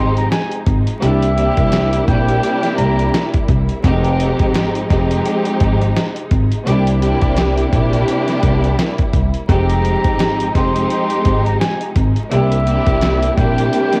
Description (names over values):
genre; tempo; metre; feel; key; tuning
hip hop, boom-bap hip-hop; 85 BPM; 4/4; swing 58% on 16ths; F dorian; A4 = 440 Hz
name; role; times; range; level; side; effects
trumpet with bucket mute; melody; 0.0-3.3, 9.5-14.0 s; E5 to C6; -24 LUFS; equal; high-pass filter, low-pass filter, cassette tape, analog delay
rich studio string section; accompaniment; 0.0-14.0 s; F2 to G4; -21 LUFS; equal; cassette tape, high-pass filter, low-pass filter, plate reverb
dark studio string section; sustained chords; 0.0-14.0 s; C3 to E4; -28 LUFS; equal; high-pass filter, low-pass filter, plate reverb
upright bass; bass; 0.0-13.7 s; F1 to C2; -20 LUFS; equal; none
dusty soul sampler-style drum kit; drums; 0.2-14.0 s; hi-hat, kick drum, snare drum; -21 LUFS; equal; cassette tape
room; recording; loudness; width
light reverb; home recording on cassette, vinyl crackle; -16 LUFS; mono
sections
0.0-14.0 A section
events
none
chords
0.0 Fm7; 1.0 C7; 3.8 Fm7; 6.7 C7; 9.5 Fm7; 12.3 C7